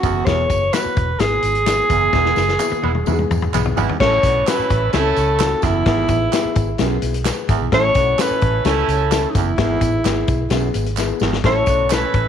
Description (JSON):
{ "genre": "uptempo 1960s-style soul", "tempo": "129 BPM", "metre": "4/4", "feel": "straight", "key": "A major", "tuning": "A4 = 440 Hz", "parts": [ { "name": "warm alto saxophone", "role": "melody", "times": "0.0-12.3 s", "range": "D#4 to C#5", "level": "-19 LUFS", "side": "equal", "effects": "none" }, { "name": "warm upright piano", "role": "accompaniment", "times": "0.0-12.2 s", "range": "G#2 to B4", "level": "-25 LUFS", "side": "left 12 dB", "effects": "none" }, { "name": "breathy baritone saxophone", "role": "riff", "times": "0.0-11.6 s", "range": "E2 to A2", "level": "-26 LUFS", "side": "right 13 dB", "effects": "none" }, { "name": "vintage muted fingered electric bass", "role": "bass", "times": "0.0-12.3 s", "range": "E1 to E2", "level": "-22 LUFS", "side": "right 1 dB", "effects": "none" }, { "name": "vintage drum kit", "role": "drums", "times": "0.0-12.2 s", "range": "crash cymbal, hi-hat, kick drum, snare drum, toms", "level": "-22 LUFS", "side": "left 4 dB", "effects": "none" }, { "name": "tambourine and handclaps", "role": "percussion", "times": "0.0-12.0 s", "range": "none", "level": "-31 LUFS", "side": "right 13 dB", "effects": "none" }, { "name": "warm horn section", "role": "second line", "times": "2.8-12.3 s", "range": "G#3 to A4", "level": "-25 LUFS", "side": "right 13 dB", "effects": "none" } ], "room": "light reverb, small room ambience", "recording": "1960s-style stereo with parts hard left and right", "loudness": "-15 LUFS", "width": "side -8 dB against mid", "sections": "0.0-4.0 A section; 4.0-12.3 B section", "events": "drum fill 2.1-4.0, 11.0-11.4; band accent 2.1-4.0", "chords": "0.3 E; 4.0 A; 5.9 E/G#; 7.7 A; 9.6 E/G#; 11.4 A" }